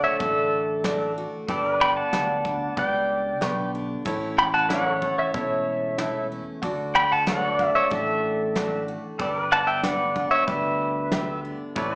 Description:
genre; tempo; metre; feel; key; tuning
honky-tonk and classic country; 93 BPM; 4/4; straight; unclear; A4 = 436 Hz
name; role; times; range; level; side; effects
pedal steel guitar; melody; 0.0-11.4 s; A4 to B5; -22 LUFS; equal; plate reverb, slapback echo
picked steel-string acoustic guitar; accompaniment; 0.0-12.0 s; E2 to F#4; -33 LUFS; left 1 dB; plate reverb
pedal steel guitar; sustained chords; 0.0-12.0 s; A4 to E5; -31 LUFS; equal; lush chorus, plate reverb
bright grand piano; accompaniment; 0.2-12.0 s; E4 to C#6; -32 LUFS; right 1 dB; plate reverb, slapback echo
fingered electric bass; bass; 0.2-12.0 s; E1 to D2; -35 LUFS; equal; none
soft brush drum kit; drums; 0.2-11.9 s; hi-hat, kick drum, snare drum; -30 LUFS; equal; none
room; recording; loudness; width
moderate club reverb, RT60 0.5 s; live gig heard through the venue's PA, club reverb, small speaker sound; -21 LUFS; side -28 dB against mid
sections
0.0-12.0 A section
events
none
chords
0.0 D; 1.5 G; 4.1 A; 6.6 D; 9.2 G

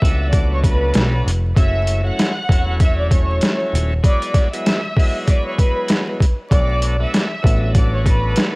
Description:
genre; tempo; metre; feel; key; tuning
hip hop, boom-bap hip-hop; 97 BPM; 4/4; swing 60% on 16ths; unclear; A4 = 435 Hz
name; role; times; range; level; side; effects
rich studio violin section; melody; 0.0-8.5 s; B4 to F#6; -24 LUFS; equal; high-pass filter, low-pass filter, cassette tape
bright tonewheel organ; accompaniment; 0.0-8.6 s; F#3 to E4; -26 LUFS; equal; overdrive, slow rotary speaker, cassette tape, high-pass filter, low-pass filter
deep dub picked electric bass; bass; 0.0-8.3 s; D#1 to C#2; -18 LUFS; equal; transformer saturation
boom bap sampler-style drum kit; drums; 0.0-8.5 s; hi-hat, kick drum, snare drum; -16 LUFS; equal; overdrive
room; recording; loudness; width
digital ambience; home recording on cassette, vinyl crackle; -14 LUFS; side -26 dB against mid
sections
0.0-6.5 A section; 6.5-8.6 A section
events
none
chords
0.0 Bm7; 1.6 F#m7; 4.0 Eadd9; 6.5 Bm7

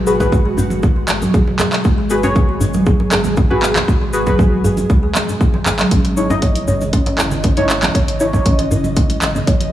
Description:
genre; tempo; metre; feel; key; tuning
afro house; 118 BPM; 4/4; straight; G# minor; A4 = 440 Hz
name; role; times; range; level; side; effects
ethereal airy pad; sustained chords; 0.0-9.7 s; B2 to D#5; -23 LUFS; right 1 dB; ensemble chorus, built-in reverb, sidechain pumping
deep mellow chord stab; stabs; 0.0-9.7 s; D#4 to D#5; -21 LUFS; left 1 dB; chorus, sidechain pumping, tape echo
warm sub bass; bass; 0.0-9.4 s; G#1 to C#2; -24 LUFS; equal; transformer saturation, sidechain pumping
kalimba; arpeggios; 0.1-9.6 s; D#3 to C#5; -21 LUFS; equal; sidechain pumping, tape echo
cabasa; percussion; 0.1-9.6 s; none; -32 LUFS; left 3 dB; none
electronic kick drum; drums; 0.2-9.6 s; none; -14 LUFS; equal; none
djembe; percussion; 0.2-9.5 s; none; -22 LUFS; left 1 dB; none
congas; percussion; 0.3-9.7 s; none; -27 LUFS; right 3 dB; none
afro-pop drum kit; drums; 1.1-9.7 s; handclaps, hi-hat; -20 LUFS; right 1 dB; none
room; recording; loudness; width
light reverb, small room ambience; dry, gritty hardware recording; -13 LUFS; side -12 dB against mid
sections
0.0-9.7 A section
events
none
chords
0.0 G#m7; 5.9 C#madd9/G#

